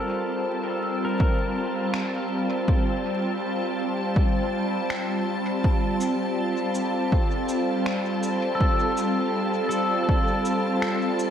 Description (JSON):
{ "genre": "ambient dub", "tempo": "81 BPM", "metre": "4/4", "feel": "swing 58% on 16ths", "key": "G minor", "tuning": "A4 = 439 Hz", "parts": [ { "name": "soft additive organ-like pad", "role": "sustained chords", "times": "0.0-11.3 s", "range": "G3 to A5", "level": "-24 LUFS", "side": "equal", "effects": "ensemble chorus, built-in reverb" }, { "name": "pedal steel guitar", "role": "arpeggios", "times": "0.0-3.4, 8.5-11.3 s", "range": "A4 to Bb4", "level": "-30 LUFS", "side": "left 2 dB", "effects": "dub echo" }, { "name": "electronic kick drum", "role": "drums", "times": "1.2-10.3 s", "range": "none", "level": "-22 LUFS", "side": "equal", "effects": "overdrive" }, { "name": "electronic finger snaps and cabasa", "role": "drums", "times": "1.9-11.3 s", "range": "none", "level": "-34 LUFS", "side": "equal", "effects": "dub echo" }, { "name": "wind-like tuned noise texture", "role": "texture", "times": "6.8-11.3 s", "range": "A4", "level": "-34 LUFS", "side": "right 5 dB", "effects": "built-in reverb" } ], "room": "wet echo chamber reverb, RT60 2.1 s", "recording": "vinyl crackle", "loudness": "-22 LUFS", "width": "side -9 dB against mid", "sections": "0.0-11.3 A section", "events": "none", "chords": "0.0 Gm7; 5.6 Fadd9/G" }